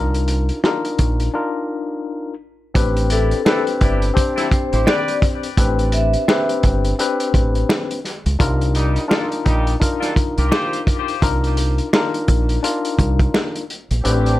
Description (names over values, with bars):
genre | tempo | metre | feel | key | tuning
hip hop, boom-bap hip-hop | 85 BPM | 4/4 | swing 59% on 16ths | unclear | A4 = 439 Hz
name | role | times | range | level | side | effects
tine electric piano | accompaniment | 0.0-14.4 s | C4 to C5 | -22 LUFS | left 3 dB | medium stereo tremolo, cassette tape, high-pass filter, low-pass filter, plate reverb
deep dub fingered electric bass | bass | 0.0-14.4 s | G1 to C#2 | -18 LUFS | equal | none
vintage drum kit | drums | 0.1-14.4 s | hi-hat, kick drum, rim click, snare drum | -19 LUFS | equal | none
vibraphone with soft mallets | melody | 3.1-6.5 s | A4 to E5 | -23 LUFS | left 2 dB | high-pass filter, low-pass filter, plate reverb
mellow horn section | stabs | 3.1-10.8 s | G3 to D5 | -26 LUFS | equal | high-pass filter, low-pass filter, plate reverb, ping-pong delay
finger snaps | percussion | 3.5-13.5 s | none | -31 LUFS | right 5 dB | none
dark studio string section | sustained chords | 14.1-14.4 s | C3 to G4 | -22 LUFS | left 1 dB | high-pass filter, low-pass filter
room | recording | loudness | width
light reverb | none | -16 LUFS | side -15 dB against mid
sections
0.0-2.8 A section; 2.8-14.4 B section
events
break 1.3-2.8; kick muted 14.0-14.4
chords
0.0 Cm11; 2.8 Am11; 8.4 Cm11